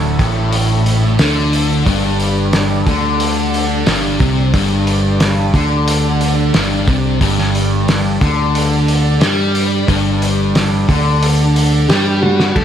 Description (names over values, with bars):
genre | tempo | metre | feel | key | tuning
psychedelic rock | 90 BPM | 4/4 | straight | unclear | A4 = 441 Hz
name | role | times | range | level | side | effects
bright tonewheel organ | sustained chords | 0.0-12.5 s | D3 to E4 | -26 LUFS | right 6 dB | slow rotary speaker, chorus vibrato
fuzz guitar | riff | 0.0-12.6 s | D2 to G3 | -15 LUFS | left 1 dB | distortion, phaser
fingered electric bass | bass | 0.0-12.6 s | D1 to G2 | -18 LUFS | equal | none
cloth-damped thuddy drum kit | drums | 0.2-12.6 s | crash cymbal, hi-hat, kick drum, snare drum, toms | -18 LUFS | equal | none
overdriven combo organ | melody | 11.9-12.6 s | F#4 to A4 | -19 LUFS | equal | tape echo
room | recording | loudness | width
light reverb, small room ambience | none | -12 LUFS | side -9 dB against mid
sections
0.0-12.6 A section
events
drum fill 12.2-12.6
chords
0.0 D; 1.9 G5